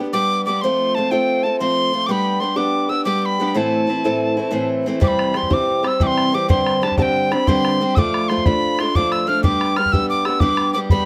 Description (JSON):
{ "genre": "celtic folk, Celtic slip jig", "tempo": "122 BPM (dotted quarters)", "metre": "9/8", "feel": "straight", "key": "unclear", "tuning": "A4 = 440 Hz", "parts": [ { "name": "picked old ladder-braced acoustic guitar", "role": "accompaniment", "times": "0.0-11.1 s", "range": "G2 to G4", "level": "-21 LUFS", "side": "equal", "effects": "none" }, { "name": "tin whistle", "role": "melody", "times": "0.1-11.1 s", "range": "G5 to F6", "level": "-23 LUFS", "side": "equal", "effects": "plate reverb" }, { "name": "bodhran", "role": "percussion", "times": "5.0-11.0 s", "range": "none", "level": "-23 LUFS", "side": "equal", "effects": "none" } ], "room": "light reverb", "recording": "close, detailed microphones", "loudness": "-18 LUFS", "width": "mono", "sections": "0.0-5.0 A section; 5.0-11.1 A section", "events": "none", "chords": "0.0 G; 0.6 F; 2.1 G; 3.5 Am; 5.0 C; 6.5 Gsus4; 8.0 Dm/F; 9.4 G" }